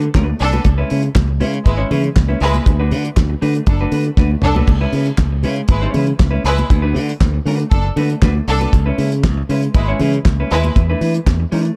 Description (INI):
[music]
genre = disco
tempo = 119 BPM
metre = 4/4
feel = straight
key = unclear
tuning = A4 = 441 Hz
[part]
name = clean electric guitar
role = accompaniment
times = 0.0-11.7 s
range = G#3 to C#5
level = -25 LUFS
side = equal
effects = none
[part]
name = modern bright fingered electric bass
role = bass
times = 0.0-11.7 s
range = F#1 to E3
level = -19 LUFS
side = equal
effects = none
[part]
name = damped 70s drum kit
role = drums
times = 0.0-11.8 s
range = crash cymbal, handclaps, hi-hat, kick drum, snare drum, toms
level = -17 LUFS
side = equal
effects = none
[part]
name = congas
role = percussion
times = 0.2-11.4 s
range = none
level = -28 LUFS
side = equal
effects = none
[part]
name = clear studio violin section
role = second line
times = 0.4-10.7 s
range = G#3 to B4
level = -24 LUFS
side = equal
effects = none
[sound]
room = studio reverb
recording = dark, warm production, faint mains hum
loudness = -16 LUFS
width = mono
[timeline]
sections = 0.0-11.8 A section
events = drum fill 4.2-4.7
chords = 0.0 Bm7/D; 0.6 C#m7; 2.7 Bm7/D; 4.7 C#m7; 6.7 Bm7/D; 8.7 C#m7; 10.8 E7sus4